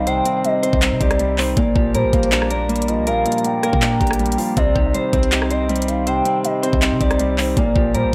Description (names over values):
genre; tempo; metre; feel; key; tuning
hip hop, trap; 160 BPM; 4/4; half-time; C minor; A4 = 440 Hz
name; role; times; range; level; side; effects
gliding portamento lead; second line; 0.0-8.1 s; C5 to G5; -24 LUFS; equal; chorus, digital delay
warm concert grand piano; accompaniment; 0.0-8.1 s; Bb2 to Eb4; -25 LUFS; equal; low-pass filter
clean electric guitar; arpeggios; 0.0-8.1 s; Bb3 to C5; -25 LUFS; equal; subtle chorus, low-pass filter, digital delay
warm 808-style bass; bass; 0.0-8.1 s; Bb1 to C3; -25 LUFS; equal; none
trap drum kit; drums; 0.1-8.0 s; handclaps, hi-hat, kick drum, rim click; -23 LUFS; equal; none
room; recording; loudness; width
light reverb; none; -18 LUFS; mono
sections
0.0-8.1 A section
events
none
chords
0.0 Cm; 1.6 Bb6; 4.6 Cm; 7.6 Bb6